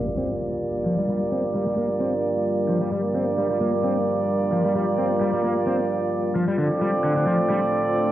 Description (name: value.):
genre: breakbeat.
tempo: 131 BPM.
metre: 4/4.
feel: swing 54% on 16ths.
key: G minor.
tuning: A4 = 444 Hz.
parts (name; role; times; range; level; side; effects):
dark analog pad; sustained chords; 0.2-8.1 s; G3 to C5; -28 LUFS; left 2 dB; chorus.
crunchy overdriven guitar; riff; 0.0-7.6 s; D3 to C4; -26 LUFS; left 1 dB; spring reverb, low-pass filter, analog delay.
warm brass ensemble; stabs; 0.0-8.1 s; Bb3 to D5; -23 LUFS; right 2 dB; analog delay.
impact; sound effects; 0.0-1.1 s; none; -36 LUFS; equal; none.
room: light reverb.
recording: dry, gritty hardware recording, transformer saturation, low-pass filter.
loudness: -20 LUFS.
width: side -13 dB against mid.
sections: 0.0-8.1 A section.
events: impact 0.0-1.1; filter sweep on analog synth pad 0.0-8.1; filter sweep 0.0-8.1.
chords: 0.0 Gm7; 6.6 Dm7.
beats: 0.17 0.63 | 1.09 1.55 2.00 2.46 | 2.92 3.38 3.84 4.29 | 4.75 5.21 5.67 6.13 | 6.58 7.04 7.50 7.96.